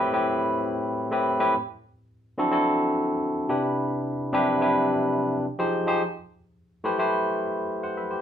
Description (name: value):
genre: pop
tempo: 107 BPM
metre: 4/4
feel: straight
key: A dorian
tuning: A4 = 439 Hz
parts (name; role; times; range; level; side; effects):
- barky tine electric piano; solo; 0.0-8.2 s; A2 to F#5; -22 LUFS; equal; none
room: wet studio reverb, RT60 0.6 s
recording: band playing live in one room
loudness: -23 LUFS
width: side -9 dB against mid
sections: 0.0-8.2 A section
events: none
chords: 0.0 Am7; 1.5 D7; 3.5 Cmaj9; 5.5 Fm7; 6.0 Am7